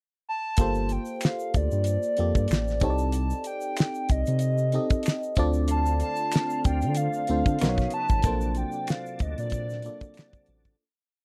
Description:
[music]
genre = R&B, neo-soul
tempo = 94 BPM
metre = 4/4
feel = swing 55% on 16ths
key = unclear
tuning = A4 = 440 Hz
[part]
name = hollow clarinet-like synth lead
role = melody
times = 0.3-10.4 s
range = D5 to A5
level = -33 LUFS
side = equal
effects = chorus, phaser
[part]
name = FM electric piano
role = accompaniment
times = 0.6-10.8 s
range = Bb3 to Eb5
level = -33 LUFS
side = equal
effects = chorus
[part]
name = smooth synth bass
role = bass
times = 0.6-10.7 s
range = G1 to D3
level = -29 LUFS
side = equal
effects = none
[part]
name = damped 70s drum kit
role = drums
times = 0.6-10.8 s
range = hi-hat, kick drum, snare drum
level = -27 LUFS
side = equal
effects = none
[part]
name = egg shaker and finger snaps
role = percussion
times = 0.6-10.8 s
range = none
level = -44 LUFS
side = equal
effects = none
[part]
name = tonewheel organ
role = sustained chords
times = 5.7-10.8 s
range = C3 to A4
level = -39 LUFS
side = equal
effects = fast rotary speaker, chorus vibrato
[sound]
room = little or no reverb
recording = dry, close 1970s-style studio recording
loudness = -26 LUFS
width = mono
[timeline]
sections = 0.0-0.6 pickup bar; 0.6-10.8 groove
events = fade-out 8.2-10.8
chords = 0.0 N.C.; 0.6 Gm11; 2.8 Cm69; 5.4 Dm7; 7.6 Bmaj9; 8.2 Bbmaj9

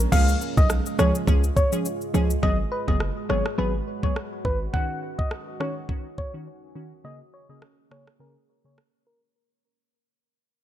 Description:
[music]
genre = dancehall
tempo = 104 BPM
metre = 4/4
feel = swing 56% on 16ths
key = unclear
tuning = A4 = 442 Hz
[part]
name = deep dark ambient pad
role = sustained chords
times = 0.0-9.3 s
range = C#3 to B4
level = -35 LUFS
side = right 3 dB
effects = chorus, built-in reverb, sidechain pumping, low-pass filter
[part]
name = hard-hitting 808-style bass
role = bass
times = 0.0-4.7 s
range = F#1 to C#2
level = -24 LUFS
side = equal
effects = none
[part]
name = afro-pop drum kit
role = drums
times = 0.0-8.9 s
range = crash cymbal, kick drum, rim click, shaker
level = -23 LUFS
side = equal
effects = none
[part]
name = soft struck synth lead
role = melody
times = 0.1-9.2 s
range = A#4 to F#5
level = -29 LUFS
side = left 1 dB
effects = chorus, low-pass filter, ping-pong delay
[part]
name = wavetable chord stab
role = accompaniment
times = 0.1-8.8 s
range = C#3 to G#4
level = -29 LUFS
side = equal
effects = low-pass filter
[sound]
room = little or no reverb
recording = none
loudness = -22 LUFS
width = side -11 dB against mid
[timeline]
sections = 0.1-9.4 A section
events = fade-out 0.1-9.4; filter sweep 0.1-9.4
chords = 0.1 C#; 2.4 G#m7; 4.7 D#m7; 7.0 A#m7

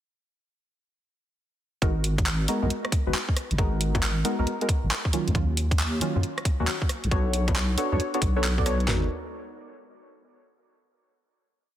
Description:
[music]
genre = UK garage, two-step garage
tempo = 136 BPM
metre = 4/4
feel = swing 65% on 16ths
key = G# minor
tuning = A4 = 440 Hz
[part]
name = deep mellow chord stab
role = stabs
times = 1.8-9.1 s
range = D#3 to D5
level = -29 LUFS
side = equal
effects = chorus, dub echo
[part]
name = deep soft wobble bass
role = bass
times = 1.8-9.1 s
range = G#1 to F#2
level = -25 LUFS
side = equal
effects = chorus, tube saturation
[part]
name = garage drum kit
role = drums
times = 1.8-9.0 s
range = handclaps, kick drum, snare drum, toms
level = -25 LUFS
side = equal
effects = overdrive
[part]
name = garage drum kit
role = drums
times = 1.8-8.9 s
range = bongos, handclaps, hi-hat, rim click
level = -30 LUFS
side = equal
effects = overdrive
[sound]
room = light reverb, digital ambience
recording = dense, heavily limited modern master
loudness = -23 LUFS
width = side -12 dB against mid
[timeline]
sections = 1.8-8.9 drop; 8.9-10.6 final chord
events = drop 1.8-8.9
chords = 1.8 G#m9; 5.1 D#m9; 6.9 Bm9; 8.9 G#m9

